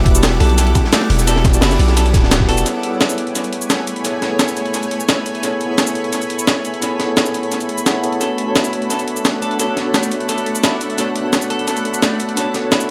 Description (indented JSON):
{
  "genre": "liquid drum and bass",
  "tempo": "173 BPM",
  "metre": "4/4",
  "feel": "straight",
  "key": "A major",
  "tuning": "A4 = 441 Hz",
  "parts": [
    { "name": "mellow tine electric piano", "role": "accompaniment", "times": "0.0-12.9 s", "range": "B3 to F#5", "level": "-23 LUFS", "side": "equal", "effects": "dub echo" },
    { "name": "shimmering ambient pad", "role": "sustained chords", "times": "0.0-12.9 s", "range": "G3 to D6", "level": "-26 LUFS", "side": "equal", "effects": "chorus, built-in reverb, sidechain pumping" },
    { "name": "long sustained 808-style bass", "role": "bass", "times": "0.0-2.6 s", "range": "D1 to B1", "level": "-17 LUFS", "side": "equal", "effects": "none" },
    { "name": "breakbeat sampler-style drum kit", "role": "drums", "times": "0.1-12.9 s", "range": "hi-hat, shaker, snare drum", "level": "-21 LUFS", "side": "equal", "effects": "studio reverb, dub echo" },
    { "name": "crunchy breakbeat drum kit", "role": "drums", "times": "0.1-2.7 s", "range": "hi-hat, ride cymbal, snare drum", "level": "-28 LUFS", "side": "equal", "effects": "high-pass filter on cymbals, studio reverb, high-pass filter on hats, high-pass filter on snare, high-pass filter on room, dub echo" },
    { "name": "electronic kick drum", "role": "drums", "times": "0.1-2.5 s", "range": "none", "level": "-17 LUFS", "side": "equal", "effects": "studio reverb" },
    { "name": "clean electric guitar", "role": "arpeggios", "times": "0.4-2.6, 8.2-12.9 s", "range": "A3 to A4", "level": "-27 LUFS", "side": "equal", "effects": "spring reverb, tape echo" },
    { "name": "bongos", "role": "percussion", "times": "0.5-2.0 s", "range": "none", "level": "-31 LUFS", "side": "equal", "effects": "none" }
  ],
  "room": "light reverb, small room ambience",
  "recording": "echo-heavy mix",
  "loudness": "-17 LUFS",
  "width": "mono",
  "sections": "0.0-2.7 A section; 2.7-12.9 B section",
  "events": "drop 0.0-2.7; band accent 2.3",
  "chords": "0.0 Em9; 2.7 Amaj9; 8.2 Bm7"
}